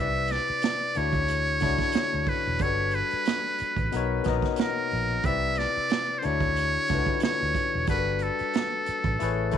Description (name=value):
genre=R&B, neo-soul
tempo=91 BPM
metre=4/4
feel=swing 55% on 16ths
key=unclear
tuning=A4 = 440 Hz
part: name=trumpet with metal mute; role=melody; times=0.0-9.6 s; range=A4 to E5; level=-27 LUFS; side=right 1 dB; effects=none
part: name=barky tine electric piano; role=accompaniment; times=0.0-9.6 s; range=B2 to G#5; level=-30 LUFS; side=left 14 dB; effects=overdrive
part: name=vintage muted fingered electric bass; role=bass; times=0.0-9.6 s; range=E1 to D2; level=-30 LUFS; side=right 1 dB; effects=none
part: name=crunchy breakbeat drum kit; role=drums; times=0.3-9.6 s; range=hi-hat, kick drum, snare drum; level=-30 LUFS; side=right 5 dB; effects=none
room=light reverb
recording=1960s-style stereo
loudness=-24 LUFS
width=side -8 dB against mid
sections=0.0-9.6 A section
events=none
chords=0.0 Cmaj9; 1.0 Dmaj9; 2.6 Gmaj9; 3.9 Bmaj9; 5.2 Cmaj9; 6.2 Dmaj9; 7.9 Gmaj9